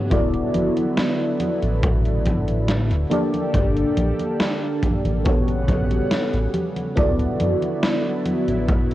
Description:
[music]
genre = vaporwave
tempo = 70 BPM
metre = 4/4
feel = straight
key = D major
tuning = A4 = 440 Hz
[part]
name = FM electric piano with soft pad layer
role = accompaniment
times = 0.0-8.9 s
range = Bb3 to D5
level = -23 LUFS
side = equal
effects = phaser, wide subtle chorus, tape echo
[part]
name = lush unison pad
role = sustained chords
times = 0.0-8.9 s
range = C#3 to F#5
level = -28 LUFS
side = right 1 dB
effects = chorus
[part]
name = chorused synth bass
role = bass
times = 0.1-8.9 s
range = D1 to Bb1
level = -23 LUFS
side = equal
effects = none
[part]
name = gated 80s digital drum machine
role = drums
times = 0.1-8.9 s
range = congas, hi-hat, snare drum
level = -26 LUFS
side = equal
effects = gated reverb, gated reverb snare, overdrive
[part]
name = kick drum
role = drums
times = 0.1-8.9 s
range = none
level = -22 LUFS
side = equal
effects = none
[sound]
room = little or no reverb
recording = worn, warbling old tape, cassette tape, warbly pitch drift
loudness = -18 LUFS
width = side -14 dB against mid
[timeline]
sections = 0.0-8.9 A section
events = none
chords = 0.1 D69; 3.1 Gmadd9; 5.3 A13; 7.0 D69

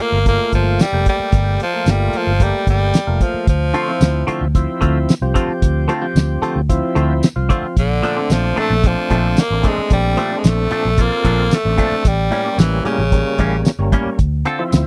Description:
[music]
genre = straight-eighth soul blues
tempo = 112 BPM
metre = 4/4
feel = straight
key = D minor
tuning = A4 = 439 Hz
[part]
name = raspy tenor saxophone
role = melody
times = 0.0-4.2, 7.8-13.6 s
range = C#3 to Bb3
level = -22 LUFS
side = equal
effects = none
[part]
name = overdriven tonewheel organ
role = accompaniment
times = 0.0-14.9 s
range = F3 to A4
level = -25 LUFS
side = equal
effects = slow rotary speaker
[part]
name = vintage muted fingered electric bass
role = bass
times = 0.0-14.9 s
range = F1 to D2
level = -21 LUFS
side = equal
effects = none
[part]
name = cloth-damped thuddy drum kit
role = drums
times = 0.0-14.9 s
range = hi-hat, kick drum, snare drum, tambourine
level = -17 LUFS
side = equal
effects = none
[part]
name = direct-recorded clean electric guitar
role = stabs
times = 3.7-14.6 s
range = A2 to A4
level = -23 LUFS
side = equal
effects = phaser
[sound]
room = little or no reverb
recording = dry, close 1970s-style studio recording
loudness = -17 LUFS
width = mono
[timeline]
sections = 0.0-14.9 A section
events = none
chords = 0.0 Gm7; 3.5 Dm7; 7.8 Bbmaj7; 12.1 A7b9; 14.2 Dm7

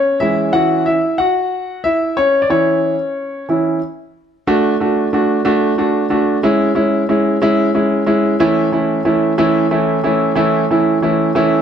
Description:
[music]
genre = pop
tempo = 61 BPM (dotted quarters)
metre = 6/8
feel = straight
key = unclear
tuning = A4 = 438 Hz
[part]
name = clear concert grand piano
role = solo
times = 0.0-11.6 s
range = E3 to F#5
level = -13 LUFS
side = equal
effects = none
[sound]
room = moderate echo chamber reverb, RT60 1.2 s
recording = dark, warm production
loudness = -13 LUFS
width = side -8 dB against mid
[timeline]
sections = 0.0-4.5 A section; 4.5-11.6 B section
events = grand piano solo 0.0-4.5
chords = 0.0 E6; 0.5 Dmaj9/E (rootless); 4.5 D; 6.4 E6; 8.4 A/E

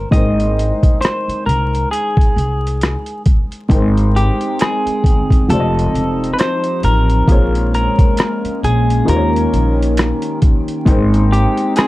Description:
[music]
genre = lo-fi hip hop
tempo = 67 BPM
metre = 4/4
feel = swing 58% on 16ths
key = Ab major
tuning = A4 = 441 Hz
[part]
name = clean electric guitar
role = melody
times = 0.0-11.9 s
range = G4 to Eb5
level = -20 LUFS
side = left 1 dB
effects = low-pass filter, plate reverb
[part]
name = warm upright piano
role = accompaniment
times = 0.0-11.9 s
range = Eb3 to G5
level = -21 LUFS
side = left 1 dB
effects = cassette tape, low-pass filter, plate reverb
[part]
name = upright bass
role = bass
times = 0.0-11.4 s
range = F1 to Eb2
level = -16 LUFS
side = equal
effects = none
[part]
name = boom bap sampler-style drum kit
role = drums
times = 0.1-11.9 s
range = hi-hat, kick drum, rim click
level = -14 LUFS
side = equal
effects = vintage 12-bit sampler grit
[part]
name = warbly tape-like pad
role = sustained chords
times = 4.4-11.9 s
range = Eb3 to A5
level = -22 LUFS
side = equal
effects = chorus, built-in reverb, low-pass filter, plate reverb
[part]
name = finger snaps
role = percussion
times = 4.6-11.9 s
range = none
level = -30 LUFS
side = right 5 dB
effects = none
[sound]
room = light reverb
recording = dark, warm production, vinyl crackle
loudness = -12 LUFS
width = side -18 dB against mid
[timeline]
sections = 0.0-3.7 A section; 3.7-11.9 B section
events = none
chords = 0.0 Abmaj7; 5.5 F7; 7.3 Bbm7; 9.1 Eb7; 10.9 Abmaj7

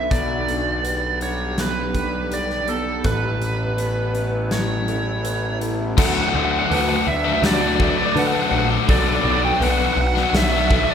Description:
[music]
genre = post-rock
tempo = 82 BPM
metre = 4/4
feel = straight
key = D major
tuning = A4 = 441 Hz
[part]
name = biting lead guitar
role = melody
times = 0.0-10.9 s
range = A4 to G5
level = -23 LUFS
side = right 2 dB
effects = overdrive
[part]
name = evolving wavetable pad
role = sustained chords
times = 0.0-10.9 s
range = C#3 to F#5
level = -32 LUFS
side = equal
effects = phaser, built-in reverb
[part]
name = felt-muted upright piano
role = arpeggios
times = 0.0-10.9 s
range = A4 to B4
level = -31 LUFS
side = right 1 dB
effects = none
[part]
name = mellow electric guitar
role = arpeggios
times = 0.0-6.0 s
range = A2 to G4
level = -31 LUFS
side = equal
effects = none
[part]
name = fuzz picked electric bass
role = bass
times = 0.0-10.8 s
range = A1 to D3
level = -24 LUFS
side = equal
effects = overdrive
[part]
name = huge arena drum kit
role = drums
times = 0.1-10.9 s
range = crash cymbal, hi-hat, kick drum, snare drum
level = -24 LUFS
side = equal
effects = none
[part]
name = overdriven electric guitar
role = riff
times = 6.0-10.9 s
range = B2 to D4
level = -21 LUFS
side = left 7 dB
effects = none
[sound]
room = wet recital hall reverb, RT60 1.5 s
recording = recorded in a church or concert hall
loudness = -18 LUFS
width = side -8 dB against mid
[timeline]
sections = 0.0-6.0 A section; 6.0-10.9 B section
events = none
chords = 0.1 G/B; 3.0 Aadd9; 6.0 D6; 8.9 Bm

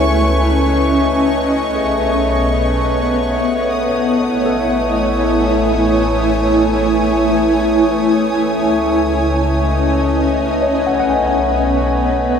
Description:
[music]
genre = ambient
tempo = free time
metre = none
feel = none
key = A lydian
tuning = A4 = 440 Hz
[part]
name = ethereal airy pad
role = sustained chords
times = 0.0-12.4 s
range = A3 to G#5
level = -15 LUFS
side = equal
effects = ensemble chorus, built-in reverb, tremolo
[part]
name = tine electric piano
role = arpeggios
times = 0.0-12.4 s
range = F#4 to G#5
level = -25 LUFS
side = left 2 dB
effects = none
[part]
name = deep rumbling drone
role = bass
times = 0.0-12.4 s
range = A1 to C#2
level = -21 LUFS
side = equal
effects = built-in reverb
[part]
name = pedal harmonium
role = drone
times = 0.0-12.4 s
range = A3 to C#5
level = -20 LUFS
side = left 1 dB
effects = none
[part]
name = clear studio violin section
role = texture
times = 0.0-12.4 s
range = C#6 to D#6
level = -27 LUFS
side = left 1 dB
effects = none
[sound]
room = wet cathedral reverb, RT60 6.2 s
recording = none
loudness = -13 LUFS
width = side -7 dB against mid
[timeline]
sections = 0.0-12.4 A section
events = fade-out on violin section 0.0-12.4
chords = 0.0 C#m7; 1.4 Badd9; 3.7 Amaj7; 8.3 C#m7; 10.6 Badd9

